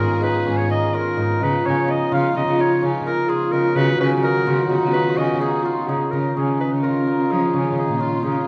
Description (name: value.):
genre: contemporary instrumental, chamber music in an uneven meter.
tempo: 255 BPM (eighths).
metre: 5/8.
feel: straight.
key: Db mixolydian.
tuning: A4 = 440 Hz.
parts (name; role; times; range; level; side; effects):
clear clarinet; melody; 0.0-8.5 s; F4 to F5; -28 LUFS; equal; none.
dark studio string section; sustained chords; 0.0-8.5 s; Db3 to Ab4; -32 LUFS; equal; none.
cimbalom; arpeggios; 0.0-8.5 s; Db4 to F4; -24 LUFS; equal; none.
rich cello; bass; 0.0-8.4 s; Ab2 to F3; -26 LUFS; equal; none.
soft octave-layered synth lead; second line; 1.4-8.4 s; Db4 to Gb4; -25 LUFS; equal; chorus, tremolo.
room: moderate recital hall reverb, RT60 1.5 s.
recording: none.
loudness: -20 LUFS.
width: mono.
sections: 0.0-6.1 A section; 6.1-8.5 B section.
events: none.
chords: 0.0 Abm; 1.4 Db7; 3.8 Cb/Db; 6.1 Dbadd9.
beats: 0.00 | 0.23 0.47 0.71 0.94 1.18 | 1.42 1.66 1.89 2.13 2.37 | 2.60 2.84 3.07 3.30 3.54 | 3.77 4.00 4.24 4.47 4.70 | 4.94 5.17 5.41 5.64 5.88 | 6.12 6.36 6.60 6.83 7.07 | 7.30 7.54 7.77 8.01 8.24 | 8.47.